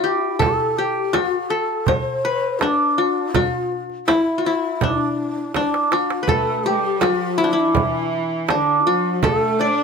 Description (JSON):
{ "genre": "Arabic maqam ensemble", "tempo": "82 BPM", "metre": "4/4", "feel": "straight", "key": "D maqam rast", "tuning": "A4 = 439 Hz", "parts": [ { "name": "qanun", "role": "melody", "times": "0.0-9.8 s", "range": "D4 to D5", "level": "-19 LUFS", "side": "left 1 dB", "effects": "none" }, { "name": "breathy low ney", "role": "second line", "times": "0.0-9.8 s", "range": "D4 to D5", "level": "-26 LUFS", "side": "left 3 dB", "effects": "slapback echo" }, { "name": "darbuka", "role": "percussion", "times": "0.4-9.8 s", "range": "none", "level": "-26 LUFS", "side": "right 6 dB", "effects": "none" }, { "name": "frame drum", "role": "percussion", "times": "0.4-9.4 s", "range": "none", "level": "-23 LUFS", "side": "right 6 dB", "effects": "none" }, { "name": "rich symphonic cello section", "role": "second line", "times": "6.3-9.8 s", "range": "D3 to D4", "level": "-25 LUFS", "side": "right 2 dB", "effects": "none" } ], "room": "light reverb", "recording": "none", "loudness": "-17 LUFS", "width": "side -5 dB against mid", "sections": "0.0-9.8 A section", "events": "drum fill 5.5-6.3", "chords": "none" }